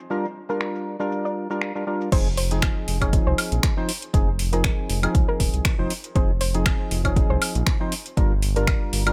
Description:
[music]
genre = deep house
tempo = 119 BPM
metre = 4/4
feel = swing 54% on 16ths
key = F minor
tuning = A4 = 445 Hz
[part]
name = deep house drum kit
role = drums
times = 0.0-9.1 s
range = crash cymbal, finger snaps, hi-hat, shaker, woodblock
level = -29 LUFS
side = equal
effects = overdrive, low-pass filter on perc, small room ambience, low-pass filter on snare, low-pass filter on hats, low-pass filter on cymbals
[part]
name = percussive organ stab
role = stabs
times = 0.1-9.1 s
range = F3 to C5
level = -30 LUFS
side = equal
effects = analog chorus, sidechain pumping, delay
[part]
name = soft round pluck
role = melody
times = 0.5-8.7 s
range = Bb4 to D5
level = -33 LUFS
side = equal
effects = chorus, dub echo
[part]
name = round analog bass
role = bass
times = 2.1-9.1 s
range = Eb1 to C2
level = -26 LUFS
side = equal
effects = tube saturation, sidechain pumping
[part]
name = electronic kick drum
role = drums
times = 2.1-8.8 s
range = none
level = -24 LUFS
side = equal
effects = overdrive, small room ambience
[sound]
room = little or no reverb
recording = none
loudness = -23 LUFS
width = mono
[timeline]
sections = 0.0-2.1 A section; 2.1-9.1 B section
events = drop 2.1-9.1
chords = 0.1 Gm7; 2.1 Fm7; 8.2 Gm7

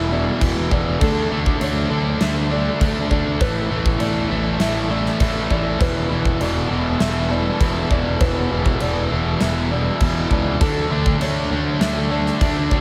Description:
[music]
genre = post-rock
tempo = 100 BPM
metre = 4/4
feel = straight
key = D major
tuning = A4 = 440 Hz
[part]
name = dark chamber string section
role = sustained chords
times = 0.0-12.8 s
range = F#3 to A4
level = -34 LUFS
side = equal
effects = none
[part]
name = felt-muted upright piano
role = arpeggios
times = 0.0-12.8 s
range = A4 to E5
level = -31 LUFS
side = equal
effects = slapback echo
[part]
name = distorted electric guitar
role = riff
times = 0.0-12.8 s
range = E2 to D4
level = -24 LUFS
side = equal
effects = distortion, slapback echo
[part]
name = fuzz picked electric bass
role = bass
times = 0.0-12.8 s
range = E1 to D2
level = -26 LUFS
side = equal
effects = overdrive
[part]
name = huge arena drum kit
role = drums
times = 0.4-12.8 s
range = crash cymbal, kick drum, snare drum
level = -25 LUFS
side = equal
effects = none
[sound]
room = moderate lush hall reverb, RT60 2.9 s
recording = big arena sound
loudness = -20 LUFS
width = mono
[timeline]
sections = 0.0-12.8 A section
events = none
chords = 0.0 Esus4; 1.0 Dmaj7; 3.4 Asus2; 5.8 Esus4; 10.6 Dmaj7

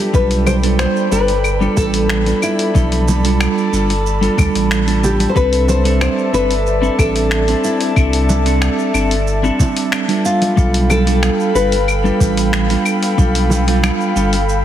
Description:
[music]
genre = sunset chillout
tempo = 92 BPM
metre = 4/4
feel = straight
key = unclear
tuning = A4 = 441 Hz
[part]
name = nylon-string guitar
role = melody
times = 0.0-14.6 s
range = E4 to C5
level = -19 LUFS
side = left 2 dB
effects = tape echo
[part]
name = clean electric guitar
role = accompaniment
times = 0.0-14.4 s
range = F3 to C5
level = -18 LUFS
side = moving between left 2 dB and right 7 dB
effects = auto-pan, ping-pong delay
[part]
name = airy breathy pad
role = sustained chords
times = 0.0-14.6 s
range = A4 to B5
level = -22 LUFS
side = equal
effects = chorus
[part]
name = warm sub bass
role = bass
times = 0.1-14.6 s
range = G1 to D2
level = -17 LUFS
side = equal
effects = none
[part]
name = dusty soul sampler-style drum kit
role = drums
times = 0.1-14.6 s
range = cabasa, claves, finger snaps, hi-hat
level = -23 LUFS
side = left 1 dB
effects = none
[part]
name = electronic kick drum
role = drums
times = 0.1-13.3 s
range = none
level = -15 LUFS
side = equal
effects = none
[part]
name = congas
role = percussion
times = 0.5-14.0 s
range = none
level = -21 LUFS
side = right 2 dB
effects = none
[sound]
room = moderate lush hall reverb, RT60 1.9 s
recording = heavily compressed radio sound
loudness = -12 LUFS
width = side -11 dB against mid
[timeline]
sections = 0.0-14.6 A section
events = none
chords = 0.0 G9; 5.4 C69; 10.2 G9

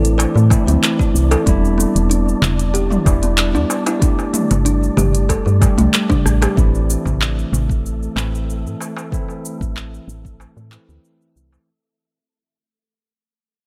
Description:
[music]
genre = organic downtempo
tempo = 94 BPM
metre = 4/4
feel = straight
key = A minor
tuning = A4 = 440 Hz
[part]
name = bell-like tine electric piano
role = accompaniment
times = 0.0-11.7 s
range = E3 to G4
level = -26 LUFS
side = equal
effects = vintage 12-bit sampler grit, sidechain pumping, low-pass filter, digital delay
[part]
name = kalimba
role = arpeggios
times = 0.0-6.6 s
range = G3 to C5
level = -23 LUFS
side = equal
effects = digital delay
[part]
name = woody FM bass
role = bass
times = 0.0-11.6 s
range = E1 to A2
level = -20 LUFS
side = equal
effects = sidechain pumping
[part]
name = organic electronic drum kit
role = drums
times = 0.0-11.7 s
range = handclaps, hi-hat, rim click, shaker, toms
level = -24 LUFS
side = equal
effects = none
[part]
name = wind-like tuned noise texture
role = texture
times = 0.0-11.7 s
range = A3 to D5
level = -32 LUFS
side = equal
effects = built-in reverb
[part]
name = darbuka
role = percussion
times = 0.2-11.6 s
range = none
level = -27 LUFS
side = equal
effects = none
[part]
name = electronic kick drum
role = drums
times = 0.5-10.4 s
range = none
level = -20 LUFS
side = equal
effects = none
[sound]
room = digital ambience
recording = none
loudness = -16 LUFS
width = mono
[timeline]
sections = 0.0-6.6 A section; 6.6-11.7 B section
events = drum fill 6.3-6.6; fade-out 6.6-11.7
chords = 0.0 Am; 1.5 Em7; 4.0 Gsus2; 6.6 Am

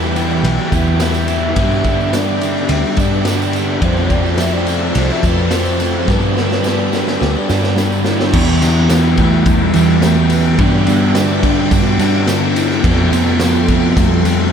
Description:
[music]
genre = rock, shoegaze and dream pop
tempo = 106 BPM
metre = 4/4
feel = straight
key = G mixolydian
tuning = A4 = 440 Hz
[part]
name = pure breathy sine lead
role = melody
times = 0.0-14.5 s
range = G3 to G5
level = -21 LUFS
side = left 2 dB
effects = chorus, diffuse ambient delay
[part]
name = phased string machine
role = sustained chords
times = 0.0-14.5 s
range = A4 to E6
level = -27 LUFS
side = equal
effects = ensemble chorus, phaser
[part]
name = crunchy overdriven guitar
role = riff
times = 0.0-14.5 s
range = F2 to A4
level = -19 LUFS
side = left 7 dB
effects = analog chorus
[part]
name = overdriven semi-hollow guitar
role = riff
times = 0.0-14.5 s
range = F2 to A4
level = -19 LUFS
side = right 8 dB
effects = reverse reverb
[part]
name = vintage muted picked electric bass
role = bass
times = 0.0-14.5 s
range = B1 to G2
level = -17 LUFS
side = right 1 dB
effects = none
[part]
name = tambourine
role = percussion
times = 0.0-14.4 s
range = none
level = -34 LUFS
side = right 10 dB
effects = none
[part]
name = raw garage drum kit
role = drums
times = 0.2-14.4 s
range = crash cymbal, kick drum, ride cymbal, snare drum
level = -19 LUFS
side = equal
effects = none
[sound]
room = wet cathedral reverb, RT60 5.9 s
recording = dreamy mix soaked in reverb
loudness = -12 LUFS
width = side -7 dB against mid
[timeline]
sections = 0.0-8.3 A section; 8.3-14.5 B section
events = drum fill 6.1-8.3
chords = 0.0 Em; 1.6 G6; 3.8 Fmaj7; 6.1 G6; 8.3 Em; 10.6 G6; 12.8 Fmaj7

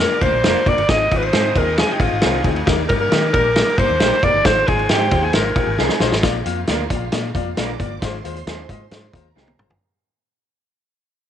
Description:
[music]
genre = uptempo 1960s-style soul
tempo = 135 BPM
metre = 4/4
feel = straight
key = unclear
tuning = A4 = 445 Hz
[part]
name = warm alto saxophone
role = melody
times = 0.0-5.8 s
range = F4 to Eb5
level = -18 LUFS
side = equal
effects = none
[part]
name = glockenspiel with soft plastic mallets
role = second line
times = 0.0-5.8 s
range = F6 to Eb7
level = -30 LUFS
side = left 14 dB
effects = none
[part]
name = rich studio string section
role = second line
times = 0.0-9.8 s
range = F4 to Eb6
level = -31 LUFS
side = right 11 dB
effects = none
[part]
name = clear upright piano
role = accompaniment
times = 0.0-9.7 s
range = F3 to F5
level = -25 LUFS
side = left 12 dB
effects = none
[part]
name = vintage muted fingered electric bass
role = bass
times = 0.0-9.8 s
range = F1 to Eb3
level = -25 LUFS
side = right 1 dB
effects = none
[part]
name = vintage drum kit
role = drums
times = 0.2-9.8 s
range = hi-hat, kick drum, ride cymbal, snare drum, toms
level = -19 LUFS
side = right 1 dB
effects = none
[part]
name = electric guitar through a small old amp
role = stabs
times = 0.4-9.5 s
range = F3 to Bb4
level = -29 LUFS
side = right 13 dB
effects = spring reverb
[sound]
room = light reverb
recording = 1960s-style stereo with parts hard left and right, nothing above 10.5 kHz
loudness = -15 LUFS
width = side -10 dB against mid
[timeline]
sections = 0.0-6.2 A section; 6.2-9.8 B section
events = drum fill 5.8-6.2, 9.4-9.8; fade-out 6.2-9.8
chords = 0.0 Bb; 0.9 Ab6; 2.7 Eb; 4.5 Ab6; 6.2 Bb; 8.0 Ab6

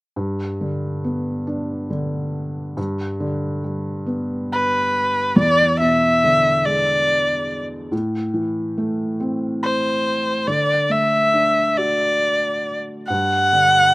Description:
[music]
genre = children's music, lullaby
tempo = 46 BPM (dotted quarters)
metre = 6/8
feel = rubato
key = G major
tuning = A4 = 440 Hz
[part]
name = felt-muted upright piano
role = accompaniment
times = 0.2-13.9 s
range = E2 to F#4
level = -23 LUFS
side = equal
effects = slapback echo
[part]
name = warm erhu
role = melody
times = 4.5-13.9 s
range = B4 to F#5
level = -16 LUFS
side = equal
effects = none
[sound]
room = little or no reverb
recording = recorded outdoors, with no room sound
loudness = -17 LUFS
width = side -21 dB against mid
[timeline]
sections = 0.2-2.8 A section; 2.8-13.9 B section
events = none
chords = 0.2 G; 5.4 E7; 7.9 Am; 10.5 D; 13.1 G5

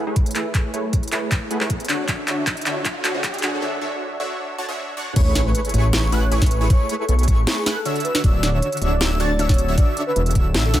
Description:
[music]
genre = future bass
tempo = 156 BPM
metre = 4/4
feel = half-time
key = A major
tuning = A4 = 439 Hz
[part]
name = supersaw stab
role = riff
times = 0.0-10.8 s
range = D3 to A5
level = -25 LUFS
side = right 1 dB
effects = sidechain pumping, low-pass filter, dub echo
[part]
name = riser and sub drop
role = sound effects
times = 0.9-6.7 s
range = none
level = -30 LUFS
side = equal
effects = none
[part]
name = electronic kick drum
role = drums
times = 0.2-10.4 s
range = none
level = -18 LUFS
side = equal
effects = none
[part]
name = trap drum kit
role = drums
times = 0.2-10.8 s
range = crash cymbal, handclaps, hi-hat, snare drum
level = -24 LUFS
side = equal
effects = none
[part]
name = warm velvety synth lead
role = melody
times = 5.2-10.8 s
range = G#4 to D5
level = -27 LUFS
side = equal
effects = chorus, sidechain pumping, dub echo
[part]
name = airy dreamy lead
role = arpeggios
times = 5.2-10.8 s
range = C#6 to A6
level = -29 LUFS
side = equal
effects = chorus, sidechain pumping, dub echo
[part]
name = wide detuned saw bass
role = bass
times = 5.2-10.8 s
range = D1 to D2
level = -19 LUFS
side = equal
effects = chorus, sidechain pumping
[sound]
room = light reverb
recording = high-pass filter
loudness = -18 LUFS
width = side -13 dB against mid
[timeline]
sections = 0.0-5.2 A section; 5.2-10.8 B section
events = build-up 0.0-5.2; drum fill 0.0-3.6; filter sweep on supersaw synth 0.0-5.2; filter sweep 0.0-5.2; riser 0.9-3.6; break 3.6-5.2; drop 5.2-10.8; impact 5.2-6.7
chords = 0.0 Amaj7; 1.9 Dmaj7; 5.2 Amaj7; 8.0 Dmaj7

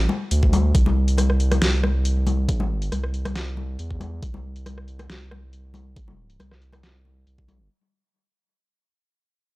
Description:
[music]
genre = deep dubstep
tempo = 138 BPM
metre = 4/4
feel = half-time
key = unclear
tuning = A4 = 441 Hz
[part]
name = saturated sub bass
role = bass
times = 0.0-7.7 s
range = C2 to E2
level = -22 LUFS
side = equal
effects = tube saturation
[part]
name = congas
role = percussion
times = 0.1-7.6 s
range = none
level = -29 LUFS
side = left 4 dB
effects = dub echo
[part]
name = dubstep drum kit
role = drums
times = 0.3-7.6 s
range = hi-hat, rim click, snare drum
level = -28 LUFS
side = right 1 dB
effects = overdrive, low-pass filter on snare, studio reverb, low-pass filter on hats
[part]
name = electronic kick drum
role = drums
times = 0.4-7.5 s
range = none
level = -21 LUFS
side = equal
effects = overdrive, studio reverb
[sound]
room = little or no reverb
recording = dry, gritty hardware recording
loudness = -19 LUFS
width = side -20 dB against mid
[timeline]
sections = 0.0-7.7 A section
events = fade-out 0.0-7.7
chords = none

